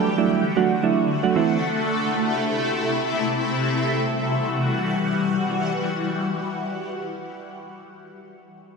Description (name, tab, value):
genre	pop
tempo	free time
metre	none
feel	none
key	E minor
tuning	A4 = 440 Hz
part	soft electric-piano-like synth keys	accompaniment	0.0-1.6 s	E3 to F#4	-20 LUFS	right 8 dB	chorus
part	shimmering ambient pad	sustained chords	0.0-6.8 s	C3 to F#4	-23 LUFS	left 2 dB	chorus, built-in reverb, phaser
room	wet echo chamber reverb, RT60 1.4 s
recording	1960s-style stereo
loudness	-20 LUFS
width	side -4 dB against mid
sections	0.0-3.7 A section; 3.7-7.9 B section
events	none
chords	0.0 D; 1.4 Am; 3.7 Emadd9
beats	free time